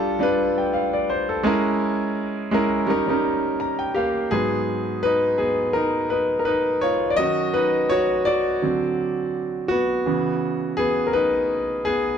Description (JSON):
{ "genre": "soul", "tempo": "84 BPM", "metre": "4/4", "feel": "swing 54% on 16ths", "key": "unclear", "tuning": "A4 = 440 Hz", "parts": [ { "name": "clear concert grand piano", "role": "solo", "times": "0.0-12.2 s", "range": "G#2 to A#5", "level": "-20 LUFS", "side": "equal", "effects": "none" } ], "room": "moderate echo chamber reverb, RT60 1.5 s", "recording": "dark, warm production", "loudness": "-20 LUFS", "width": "side -8 dB against mid", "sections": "0.0-4.3 A section; 4.3-12.2 B section", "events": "grand piano fill 3.2-4.3; grand piano solo 4.3-12.2", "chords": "0.0 F69; 1.4 A#m7b5; 2.9 D#7; 4.3 G#m7; 7.2 D#m7; 8.6 D7; 10.1 C#m7" }